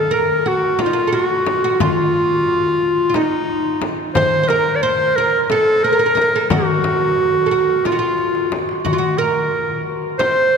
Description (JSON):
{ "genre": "Turkish makam ensemble", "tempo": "179 BPM (eighths)", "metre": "7/8", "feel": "straight", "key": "F makam hicaz", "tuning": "A4 = 440 Hz", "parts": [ { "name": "clear clarinet", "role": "melody", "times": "0.0-10.6 s", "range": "Eb4 to D5-39c", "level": "-16 LUFS", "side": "equal", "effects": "none" }, { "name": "oud", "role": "second line", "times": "0.0-10.6 s", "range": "Eb4 to C5", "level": "-22 LUFS", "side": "right 4 dB", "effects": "none" }, { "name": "darbuka", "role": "percussion", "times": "0.8-10.6 s", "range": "none", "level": "-27 LUFS", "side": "left 3 dB", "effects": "none" }, { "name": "frame drum", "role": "percussion", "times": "0.8-10.4 s", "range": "none", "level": "-27 LUFS", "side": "left 4 dB", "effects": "none" } ], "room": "wet cathedral reverb, RT60 6.8 s", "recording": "recorded in a church or concert hall", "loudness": "-15 LUFS", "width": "side -6 dB against mid", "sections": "0.0-10.6 A section", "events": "drum fill 8.2-8.9", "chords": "none" }